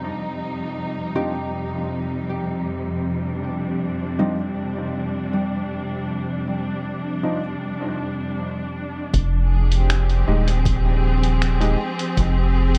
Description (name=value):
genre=ambient dub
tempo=79 BPM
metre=4/4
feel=straight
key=F dorian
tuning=A4 = 440 Hz
part: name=muted studio string section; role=sustained chords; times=0.0-12.8 s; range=F2 to Ab4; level=-28 LUFS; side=equal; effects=none
part: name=concert harp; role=arpeggios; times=1.2-9.2 s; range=G3 to G4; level=-33 LUFS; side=equal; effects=low-pass filter, tape echo
part: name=warm upright piano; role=stabs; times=1.2-11.8 s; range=F3 to G4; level=-32 LUFS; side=equal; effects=low-pass filter, dub echo
part: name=soft dub sub bass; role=bass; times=9.1-12.8 s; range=Eb1 to F1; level=-20 LUFS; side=equal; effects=none
part: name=electronic kick drum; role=drums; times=9.1-12.3 s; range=none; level=-25 LUFS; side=equal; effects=none
part: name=lo-fi sampler-style drum kit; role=drums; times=9.1-12.8 s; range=finger snaps, hi-hat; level=-31 LUFS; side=equal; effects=dub echo
room=light reverb, studio reverb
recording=echo-heavy mix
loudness=-23 LUFS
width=mono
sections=0.0-9.1 A section; 9.1-12.8 B section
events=filter sweep on harp 0.0-9.1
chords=0.0 Cmadd9/F; 9.1 Fm7